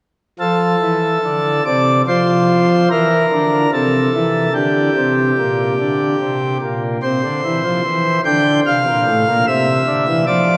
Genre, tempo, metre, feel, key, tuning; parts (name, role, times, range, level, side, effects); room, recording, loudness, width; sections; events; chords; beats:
classical, chorale-style piece for pipe organ; 73 BPM; 4/4; rubato; F major; A4 = 440 Hz
pipe organ, principal chorus; solo; 0.4-10.6 s; A2 to G5; -16 LUFS; equal
wet cathedral reverb, RT60 5.1 s; -16 LUFS; mono
0.4-10.6 A section
0.4 F; 3.7 C7; 7.0 F/C
| 0.40 1.25 2.09 2.91 | 3.73 4.55 5.38 6.21 | 7.04 7.85 8.66 9.48 | 10.27